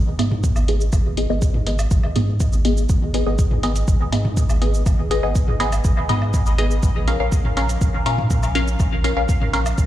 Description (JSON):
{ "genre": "dub techno", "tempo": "122 BPM", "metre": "4/4", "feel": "straight", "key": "G# dorian", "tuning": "A4 = 439 Hz", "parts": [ { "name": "warm sub bass", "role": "bass", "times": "0.0-9.9 s", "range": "G#1 to A#2", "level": "-21 LUFS", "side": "equal", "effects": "sidechain pumping" }, { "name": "filtered dub chord stab", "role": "stabs", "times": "0.2-9.7 s", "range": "B3 to E#5", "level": "-23 LUFS", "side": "left 1 dB", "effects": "phaser, sidechain pumping, dub echo" }, { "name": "electronic hi-hat and cabasa", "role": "drums", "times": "0.2-9.9 s", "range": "none", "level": "-33 LUFS", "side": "right 1 dB", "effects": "none" }, { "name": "electronic woodblock and toms", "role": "percussion", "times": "0.2-9.8 s", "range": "none", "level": "-29 LUFS", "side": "right 1 dB", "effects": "overdrive, sidechain pumping on perc, sidechain pumping on toms, dub echo" }, { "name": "electronic kick drum", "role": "drums", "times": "0.4-9.9 s", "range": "none", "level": "-18 LUFS", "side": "equal", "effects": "none" } ], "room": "little or no reverb", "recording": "played on a big sound system in a bare room, large studio reverb", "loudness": "-17 LUFS", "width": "side -13 dB against mid", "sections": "0.0-9.9 A section", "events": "none", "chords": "0.0 G#m; 6.8 A#m" }